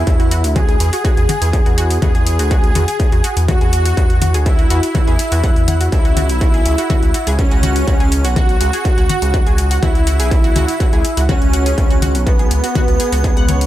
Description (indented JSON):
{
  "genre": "melodic techno",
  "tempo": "123 BPM",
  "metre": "4/4",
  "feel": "straight",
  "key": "unclear",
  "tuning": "A4 = 438 Hz",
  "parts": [
    { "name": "soft supersaw", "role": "melody", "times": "0.0-13.6 s", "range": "B3 to G#4", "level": "-21 LUFS", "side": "right 1 dB", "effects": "sidechain pumping, tape echo" },
    { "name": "airy dreamy lead", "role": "second line", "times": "0.0-13.6 s", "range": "B4 to G#5", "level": "-26 LUFS", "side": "left 1 dB", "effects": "chorus, sidechain pumping, digital delay" },
    { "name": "analog pluck", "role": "arpeggios", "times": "0.0-13.6 s", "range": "F#4 to F#6", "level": "-24 LUFS", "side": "right 1 dB", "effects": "chorus, cassette tape, sidechain pumping, digital delay" },
    { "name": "gritty driven synth bass", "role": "bass", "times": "0.0-13.7 s", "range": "B1 to E2", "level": "-16 LUFS", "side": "equal", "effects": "sidechain pumping" },
    { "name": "electronic hi-hat and congas", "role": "drums", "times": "0.1-13.7 s", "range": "none", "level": "-23 LUFS", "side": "left 4 dB", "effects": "studio ambience" },
    { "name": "electronic kick drum", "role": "drums", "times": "0.1-13.3 s", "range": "none", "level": "-15 LUFS", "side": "equal", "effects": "distortion, studio ambience" }
  ],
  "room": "little or no reverb",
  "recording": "none",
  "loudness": "-12 LUFS",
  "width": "side -14 dB against mid",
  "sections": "0.0-13.7 A section",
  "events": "none",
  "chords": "0.0 E; 5.9 C#m"
}